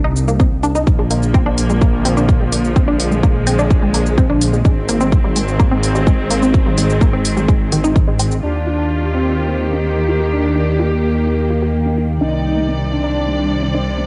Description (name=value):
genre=melodic techno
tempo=127 BPM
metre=4/4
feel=straight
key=unclear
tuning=A4 = 442 Hz
part: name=unison pluck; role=arpeggios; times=0.0-14.1 s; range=Eb3 to G4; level=-23 LUFS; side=equal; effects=phaser, sidechain pumping, cassette tape, tape echo
part: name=swelling detuned saw bass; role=bass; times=0.0-14.1 s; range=Ab1 to Eb2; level=-21 LUFS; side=equal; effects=sidechain pumping
part: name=electronic shaker and hi-hat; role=drums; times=0.2-8.4 s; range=none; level=-26 LUFS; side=equal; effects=sidechain pumping on perc, cassette tape, sidechain pumping on hats
part: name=electronic kick drum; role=drums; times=0.4-8.1 s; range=none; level=-16 LUFS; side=equal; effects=cassette tape
part: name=rich studio string section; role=sustained chords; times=0.9-14.1 s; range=C3 to D5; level=-23 LUFS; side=equal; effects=sidechain pumping, cassette tape
part: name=soft supersaw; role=melody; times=8.4-13.5 s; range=Bb3 to Eb4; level=-23 LUFS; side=equal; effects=sidechain pumping, cassette tape, tape echo
part: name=warbly tape-like pad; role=texture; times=9.5-14.1 s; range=Eb3 to G5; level=-26 LUFS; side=equal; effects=chorus, built-in reverb, sidechain pumping, cassette tape
room=light reverb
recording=home recording on cassette, nothing above 10.4 kHz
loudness=-16 LUFS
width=mono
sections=0.0-8.4 A section; 8.4-14.1 B section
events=none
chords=0.0 Cm; 0.9 Bb; 4.7 Ab; 8.4 Eb; 12.2 Cm